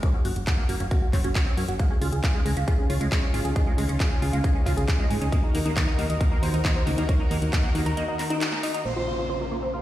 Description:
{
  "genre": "uplifting trance",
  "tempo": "136 BPM",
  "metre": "4/4",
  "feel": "straight",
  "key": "unclear",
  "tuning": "A4 = 440 Hz",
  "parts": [
    { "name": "supersaw stab", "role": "melody", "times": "0.0-9.8 s", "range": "Eb4 to Bb5", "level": "-31 LUFS", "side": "equal", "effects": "sidechain pumping, low-pass filter, tape echo" },
    { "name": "liquid acid bass", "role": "arpeggios", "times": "0.0-9.8 s", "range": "Ab3 to Gb4", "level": "-34 LUFS", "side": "right 1 dB", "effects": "wide subtle chorus, sidechain pumping, tape echo" },
    { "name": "big-room dance drum kit", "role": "drums", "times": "0.0-8.8 s", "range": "handclaps, hi-hat", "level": "-33 LUFS", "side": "equal", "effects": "low-pass filter on snare, sidechain pumping on hats, low-pass filter on hats" },
    { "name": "electronic kick drum", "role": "drums", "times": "0.0-7.6 s", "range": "none", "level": "-23 LUFS", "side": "equal", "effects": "none" },
    { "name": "solid FM bass", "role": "bass", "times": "0.3-9.8 s", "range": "Gb1 to Gb2", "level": "-26 LUFS", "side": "equal", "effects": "sidechain pumping" },
    { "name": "lush unison pad", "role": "sustained chords", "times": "1.8-9.8 s", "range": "Db3 to Bb4", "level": "-32 LUFS", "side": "equal", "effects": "chorus, sidechain pumping" },
    { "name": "dark studio violin section", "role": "second line", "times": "8.9-9.4 s", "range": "C5", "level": "-32 LUFS", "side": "left 1 dB", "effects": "dub echo" },
    { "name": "downlifter", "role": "sound effects", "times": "8.9-9.8 s", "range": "none", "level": "-36 LUFS", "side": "equal", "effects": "none" }
  ],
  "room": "light reverb",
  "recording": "played on a big sound system in a bare room, stone room reverb",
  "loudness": "-22 LUFS",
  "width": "side -14 dB against mid",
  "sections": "0.0-8.9 A section",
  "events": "filter sweep on acid bass 0.0-8.9; break 8.0-8.9; band accent 8.4",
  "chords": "0.0 N.C.; 1.8 Dbadd9; 5.3 Ebm; 8.9 Bbmadd9",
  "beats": "| 0.03 0.47 0.91 1.35 | 1.79 2.24 2.68 3.12 | 3.56 4.00 4.44 4.88 | 5.32 5.76 6.21 6.65 | 7.09 7.53 7.97 8.41 | 8.85 9.29 9.74"
}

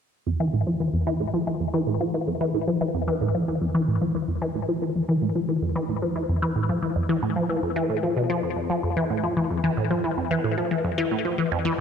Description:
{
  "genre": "ambient",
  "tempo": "112 BPM",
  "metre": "4/4",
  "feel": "straight",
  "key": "F major",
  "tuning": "A4 = 440 Hz",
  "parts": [
    { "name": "resonant blip pluck", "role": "riff", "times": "0.3-11.8 s", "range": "F2 to F3", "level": "-22 LUFS", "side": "equal", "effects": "phaser, ping-pong delay" }
  ],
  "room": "wet plate reverb, RT60 2.6 s",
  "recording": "none",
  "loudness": "-22 LUFS",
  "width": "side -7 dB against mid",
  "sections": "0.3-8.8 A section; 8.8-11.8 B section",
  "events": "filter sweep on synth arpeggio sound 0.3-8.8",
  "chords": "none",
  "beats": "| 0.26 0.80 1.33 1.87 | 2.41 2.94 3.48 4.01 | 4.55 5.08 5.62 6.16 | 6.69 7.23 7.76 8.30 | 8.84 9.37 9.91 10.44 | 10.98 11.51"
}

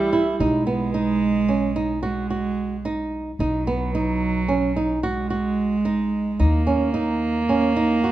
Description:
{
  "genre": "contemporary instrumental, chamber music in an uneven meter",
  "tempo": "220 BPM (eighths)",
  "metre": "11/8",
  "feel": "straight",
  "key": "B major",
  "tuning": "A4 = 441 Hz",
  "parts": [
    { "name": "flamenco guitar", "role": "arpeggios", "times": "0.0-8.1 s", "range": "B3 to F#4", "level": "-24 LUFS", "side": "right 2 dB", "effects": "none" },
    { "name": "upright bass", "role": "bass", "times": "0.0-8.1 s", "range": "B1 to D#2", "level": "-28 LUFS", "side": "left 1 dB", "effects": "none" },
    { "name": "rich cello", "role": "melody", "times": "0.4-8.1 s", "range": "F#3 to A#3", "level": "-23 LUFS", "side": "right 3 dB", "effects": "none" }
  ],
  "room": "light reverb",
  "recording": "dark, warm production",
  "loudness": "-20 LUFS",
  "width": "side -13 dB against mid",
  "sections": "0.4-8.1 A section",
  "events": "none",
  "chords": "0.4 B6; 6.4 D#5",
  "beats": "0.12 | 0.39 0.66 0.94 1.21 1.48 1.76 2.03 2.30 2.58 2.85 3.12 | 3.40 3.67 3.94 4.21 4.49 4.76 5.03 5.30 5.58 5.85 6.12 | 6.40 6.67 6.94 7.21 7.49 7.76 8.03"
}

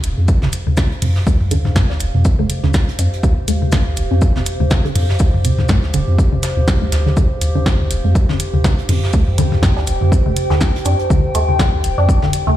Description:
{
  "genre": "minimal techno",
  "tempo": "122 BPM",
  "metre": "4/4",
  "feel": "swing 57% on 16ths",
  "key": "D minor",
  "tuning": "A4 = 439 Hz",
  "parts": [
    { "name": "punchy sub bass", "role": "bass", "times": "0.0-12.5 s", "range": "D1 to F2", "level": "-17 LUFS", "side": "equal", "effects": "sidechain pumping" },
    { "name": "soft brush drum kit", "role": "drums", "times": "0.0-12.5 s", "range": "hi-hat, shaker, snare drum", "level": "-31 LUFS", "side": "equal", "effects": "high-pass filter on hats, high-pass filter on snare, high-pass filter on perc, high-pass filter on room" },
    { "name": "techno drum kit", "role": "drums", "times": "0.0-12.4 s", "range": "hi-hat, snare drum", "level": "-25 LUFS", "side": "equal", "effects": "none" },
    { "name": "warbly tape-like pad", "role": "texture", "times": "0.0-12.6 s", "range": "G4 to G5", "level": "-24 LUFS", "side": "equal", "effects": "chorus, built-in reverb, sidechain pumping" },
    { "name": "resonant blip pluck", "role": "riff", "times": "0.2-12.5 s", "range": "C3 to D4", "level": "-23 LUFS", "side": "equal", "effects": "phaser, lush chorus, sidechain pumping, digital delay" },
    { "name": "electronic kick drum", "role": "drums", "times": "0.3-12.2 s", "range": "none", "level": "-14 LUFS", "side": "equal", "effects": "none" },
    { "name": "electronic toms", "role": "percussion", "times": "0.7-12.6 s", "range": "none", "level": "-21 LUFS", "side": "left 1 dB", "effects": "tape echo" }
  ],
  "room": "small room ambience",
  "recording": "played on a big sound system in a bare room, large studio reverb",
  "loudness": "-13 LUFS",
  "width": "side -13 dB against mid",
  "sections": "0.0-12.6 A section",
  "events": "fade-in on ambient pad 0.0-12.6; filter sweep on synth arpeggio sound 0.0-12.6",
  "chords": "0.0 Dm7",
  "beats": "0.28 0.78 | 1.27 1.76 2.25 2.74 | 3.23 3.73 4.22 4.71 | 5.20 5.69 6.18 6.68 | 7.17 7.66 8.15 8.64 | 9.14 9.63 10.12 10.61 | 11.10 11.60 12.09"
}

